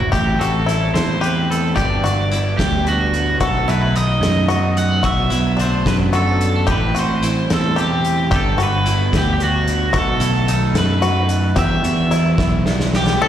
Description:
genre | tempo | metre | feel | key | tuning
math rock and midwest emo | 73 BPM (dotted quarters) | 6/8 | straight | E minor | A4 = 440 Hz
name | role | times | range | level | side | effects
crunchy overdriven guitar | melody | 0.0-13.3 s | F#4 to F#5 | -21 LUFS | right 2 dB | slapback echo, tape echo
twelve-string electric guitar | accompaniment | 0.0-13.3 s | E2 to G4 | -26 LUFS | right 6 dB | spring reverb
bluegrass banjo | arpeggios | 0.0-13.3 s | D4 to A4 | -24 LUFS | left 5 dB | slapback echo
picked electric bass | bass | 0.0-13.2 s | G1 to F#2 | -19 LUFS | equal | none
loose indie drum kit | drums | 0.0-13.2 s | hi-hat, kick drum, snare drum, toms | -23 LUFS | equal | none
crunchy overdriven guitar | riff | 0.1-13.3 s | G2 to A4 | -25 LUFS | right 1 dB | slapback echo
room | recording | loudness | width
studio ambience | live gig heard through the venue's PA, recital hall reverb | -15 LUFS | side -10 dB against mid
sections
0.1-13.2 A section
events
drum fill 12.4-13.2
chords
0.1 Am7; 1.8 Gmaj9; 3.4 B7; 5.0 Bm7; 6.7 Am7; 8.3 Gmaj7; 9.9 B7; 11.6 Em9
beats
| 0.14 0.95 | 1.77 2.59 | 3.41 4.23 | 5.05 5.87 | 6.68 7.50 | 8.32 9.13 | 9.95 10.76 | 11.58 12.39 | 13.21

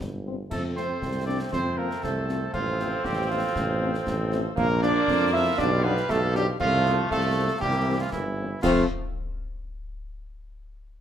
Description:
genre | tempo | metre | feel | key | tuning
military-style march for wind band | 118 BPM | 2/4 | straight | F major | A4 = 440 Hz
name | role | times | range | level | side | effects
clear woodwind section | second line | 0.0-8.8 s | G4 to F5 | -34 LUFS | left 3 dB | none
clear trombone section | sustained chords | 0.0-8.8 s | E3 to C4 | -32 LUFS | right 2 dB | none
mellow tuba | bass | 0.0-8.8 s | G1 to F2 | -27 LUFS | right 1 dB | none
concert snare drum, concert bass drum and clash cymbals | drums | 0.0-8.9 s | none | -36 LUFS | left 2 dB | none
mellow French horn section | accompaniment | 0.3-8.8 s | E3 to D4 | -32 LUFS | left 6 dB | none
mellow cornet | melody | 0.5-8.8 s | E4 to E5 | -29 LUFS | equal | none
clear euphonium | second line | 0.5-8.8 s | E3 to E4 | -30 LUFS | right 4 dB | none
room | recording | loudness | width
moderate large studio reverb, RT60 1.1 s | none | -23 LUFS | side -9 dB against mid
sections
0.0-8.6 A section; 8.6-9.6 B section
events
none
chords
0.0 C5; 0.5 F; 2.5 F/A; 4.6 Bb; 5.6 G7/B; 6.6 F/C; 7.6 C7; 8.6 F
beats
0.01 | 0.51 1.02 | 1.53 2.03 | 2.54 3.05 | 3.56 4.06 | 4.57 5.08 | 5.58 6.09 | 6.60 7.11 | 7.61 8.12 | 8.63

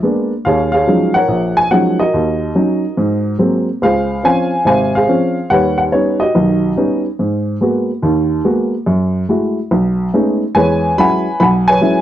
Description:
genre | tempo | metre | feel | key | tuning
solo jazz | 143 BPM | 4/4 | swing 65% on 8ths | Eb minor | A4 = 440 Hz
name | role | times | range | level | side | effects
dark upright piano | solo | 0.0-12.0 s | Ab1 to B5 | -12 LUFS | equal | none
room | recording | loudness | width
light reverb | dark, warm production | -12 LUFS | side -12 dB against mid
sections
0.0-3.8 A section; 3.8-12.0 B section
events
none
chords
0.4 Ebm11; 2.1 Ebm7; 3.0 Ab9; 3.8 Dbmaj7; 5.5 Eb7alt; 7.2 Abm9; 8.9 Gbm9; 9.7 B13; 10.5 E69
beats
0.03 | 0.45 0.87 1.29 1.71 | 2.13 2.55 2.97 3.39 | 3.81 4.23 4.65 5.07 | 5.49 5.91 6.33 6.76 | 7.18 7.60 8.02 8.44 | 8.86 9.28 9.70 10.12 | 10.54 10.96 11.38 11.81

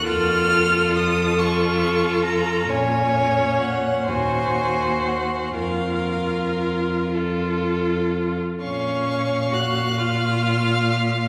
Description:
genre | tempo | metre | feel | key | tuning
classical, slow romantic movement for string quartet | 38-47 BPM (dotted quarters) | 6/8 | rubato | Bb minor | A4 = 441 Hz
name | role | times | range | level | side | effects
rich violin | melody | 0.0-11.3 s | F5 to Gb6 | -27 LUFS | equal | none
rich violin | second line | 0.0-11.3 s | A4 to F5 | -27 LUFS | equal | none
clear viola | accompaniment | 0.0-11.3 s | Db4 to Gb4 | -27 LUFS | equal | none
bright cello | bass | 0.0-11.3 s | Eb2 to Bb2 | -27 LUFS | equal | none
room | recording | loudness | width
wet church reverb, RT60 3.6 s | recorded in a church or concert hall | -21 LUFS | mono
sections
0.0-8.6 A section; 8.6-11.3 B section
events
none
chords
0.1 F; 2.7 Bbm; 4.1 Ebm; 5.6 Fsus4; 8.6 Bbm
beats
| 0.07 1.39 | 2.69 4.09 | 5.58 7.14 | 8.63 9.99

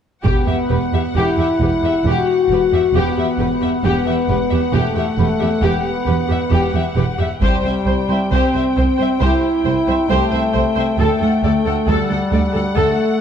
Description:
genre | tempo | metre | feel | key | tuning
cinematic, epic orchestral film score | 67 BPM | 4/4 | straight | E minor | A4 = 440 Hz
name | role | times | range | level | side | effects
rich chamber violin section | melody | 0.2-13.2 s | F#5 to G5 | -28 LUFS | left 3 dB | none
warm symphonic violin section | second line | 0.2-13.0 s | G4 to F#5 | -25 LUFS | left 4 dB | none
rich symphonic viola section | accompaniment | 0.2-13.0 s | G4 to C5 | -24 LUFS | right 1 dB | none
rich symphonic cello section | bass | 0.2-12.8 s | C2 to E2 | -22 LUFS | right 3 dB | none
rich symphonic double bass section | bass | 0.2-12.8 s | E1 to D2 | -22 LUFS | right 3 dB | none
taiko ensemble | drums | 0.2-9.2 s | none | -20 LUFS | equal | none
warm French horn section | sustained chords | 0.3-13.2 s | G3 to F#4 | -18 LUFS | left 2 dB | none
room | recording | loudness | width
moderate concert hall reverb, RT60 2.2 s | dark, warm production | -14 LUFS | side -8 dB against mid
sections
0.2-13.2 A section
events
none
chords
0.2 Emadd9; 7.4 C; 11.0 D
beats
| 0.24 1.16 2.05 2.95 | 3.84 4.74 5.63 6.52 | 7.42 8.33 9.22 10.10 | 10.99 11.88 12.76

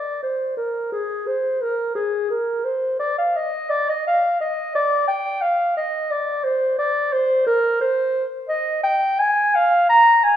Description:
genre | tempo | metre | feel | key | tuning
classical, baroque-style fantasia for unaccompanied clarinet | 87 BPM | 4/4 | rubato | Eb major | A4 = 438 Hz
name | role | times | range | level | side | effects
dark clarinet | solo | 0.0-10.4 s | Ab4 to Bb5 | -18 LUFS | equal | none
room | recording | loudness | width
wet recital hall reverb, RT60 1.6 s | recorded in a church or concert hall | -18 LUFS | side -10 dB against mid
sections
0.0-10.4 A section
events
none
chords
none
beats
0.22 0.92 1.61 | 2.31 3.00 3.70 4.39 | 5.08 5.77 6.45 7.13 | 7.81 8.50 9.20 9.90

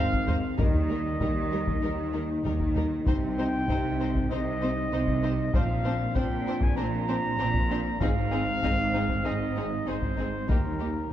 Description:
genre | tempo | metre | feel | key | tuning
cinematic, epic orchestral film score | 97 BPM | 4/4 | straight | unclear | A4 = 438 Hz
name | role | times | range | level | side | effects
warm symphonic violin section | melody | 0.0-10.9 s | G4 to C5 | -41 LUFS | left 4 dB | none
rich symphonic violin section | second line | 0.0-10.9 s | D4 to Eb4 | -40 LUFS | left 3 dB | none
warm symphonic viola section | accompaniment | 0.0-10.9 s | G3 to C4 | -38 LUFS | right 1 dB | none
mellow French horn section | sustained chords | 0.0-11.0 s | Eb3 to Eb4 | -33 LUFS | left 3 dB | none
mellow trumpet section | stabs | 0.0-11.1 s | Bb4 to Bb5 | -32 LUFS | right 1 dB | none
rich symphonic cello section | bass | 0.0-11.0 s | Eb2 to Eb3 | -33 LUFS | right 2 dB | none
rich symphonic double bass section | bass | 0.0-11.0 s | Ab1 to Eb2 | -33 LUFS | right 3 dB | none
taiko ensemble | drums | 0.1-11.1 s | none | -29 LUFS | left 1 dB | none
room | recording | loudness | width
moderate scoring stage reverb, RT60 1.9 s | dark, warm production | -25 LUFS | side -11 dB against mid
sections
0.0-11.1 A section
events
none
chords
0.0 Ab; 0.6 Eb; 3.1 Cm; 5.5 Bbadd9; 8.0 Ab; 10.5 Eb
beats
| 0.59 1.21 1.83 2.45 | 3.07 3.69 4.30 4.92 | 5.54 6.16 6.78 7.40 | 8.02 8.63 9.25 9.87 | 10.49 11.11

